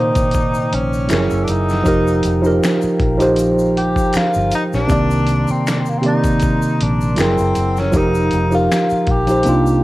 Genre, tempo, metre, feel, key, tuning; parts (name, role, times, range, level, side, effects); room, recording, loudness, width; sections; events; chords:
R&B, neo-soul; 79 BPM; 4/4; swing 54% on 16ths; A4 = 440 Hz
warm tenor saxophone; melody; 0.0-9.8 s; Bb3 to G4; -21 LUFS; left 1 dB; cassette tape
tine electric piano; accompaniment; 0.0-9.8 s; Bb2 to D5; -16 LUFS; right 1 dB; cassette tape
glass harmonica; sustained chords; 0.0-9.8 s; G4 to E6; -32 LUFS; left 2 dB; cassette tape
dusty soul sampler-style drum kit; drums; 0.2-9.6 s; finger snaps, hi-hat, kick drum, snare drum; -22 LUFS; equal; cassette tape
tube shaker and finger snaps; percussion; 0.2-9.8 s; -32 LUFS; left 3 dB
vintage muted fingered electric bass; bass; 0.7-9.8 s; F1 to C2; -20 LUFS; left 1 dB
light reverb, studio reverb; home recording on cassette; -14 LUFS; side -17 dB against mid
0.0-9.8 A section
0.0 Cm9; 1.1 F#9; 1.9 F9sus4; 4.9 Cm9; 7.2 F#9; 7.9 F9sus4